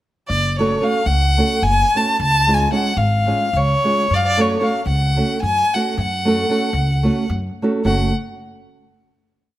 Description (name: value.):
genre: balkan folk, Balkan wedding band.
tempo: 223 BPM (eighths).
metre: 7/8.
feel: straight.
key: F# harmonic minor.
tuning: A4 = 444 Hz.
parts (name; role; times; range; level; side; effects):
rich violin; melody; 0.3-8.1 s; C#5 to A5; -19 LUFS; left 1 dB; none.
upright bass; bass; 0.3-8.1 s; F#1 to F#2; -20 LUFS; equal; none.
nylon-string guitar; accompaniment; 0.6-8.1 s; G#3 to A4; -20 LUFS; right 2 dB; none.
room: moderate recital hall reverb, RT60 1.5 s.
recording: close, detailed microphones.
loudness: -15 LUFS.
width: side -14 dB against mid.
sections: 0.3-7.8 A section; 7.8-9.6 final chord.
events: none.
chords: 0.3 F#m; 2.2 C#; 4.1 F#m.